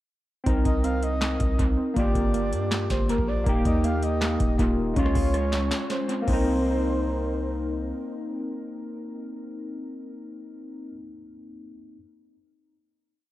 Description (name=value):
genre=hip hop, trap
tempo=160 BPM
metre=4/4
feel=half-time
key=C minor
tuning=A4 = 441 Hz
part: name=overdriven tine electric piano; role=accompaniment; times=0.4-12.0 s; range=Ab3 to Bb4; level=-30 LUFS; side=left 2 dB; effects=analog chorus, low-pass filter, dub echo
part: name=warbly lo-fi synth keys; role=arpeggios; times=0.5-11.0 s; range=Ab3 to Bb4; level=-30 LUFS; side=right 1 dB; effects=chorus, low-pass filter, dub echo
part: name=hard-hitting 808-style bass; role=bass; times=0.5-7.9 s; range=Eb1 to G2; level=-28 LUFS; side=equal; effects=none
part: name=booming analog drum machine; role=drums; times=0.5-6.5 s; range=crash cymbal, handclaps, hi-hat, kick drum, rim click, snare drum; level=-26 LUFS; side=equal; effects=overdrive, dub echo
part: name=breathy flute-like synth lead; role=second line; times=0.7-7.5 s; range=Bb4 to F5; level=-32 LUFS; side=right 1 dB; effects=chorus, dub echo
room=light reverb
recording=echo-heavy mix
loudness=-22 LUFS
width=side -15 dB against mid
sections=0.5-6.5 hook; 6.5-9.5 final hit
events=break 5.7-6.5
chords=0.5 Cm7; 2.0 Gm7; 3.5 Eb; 5.0 Dbmaj7; 6.3 Cm7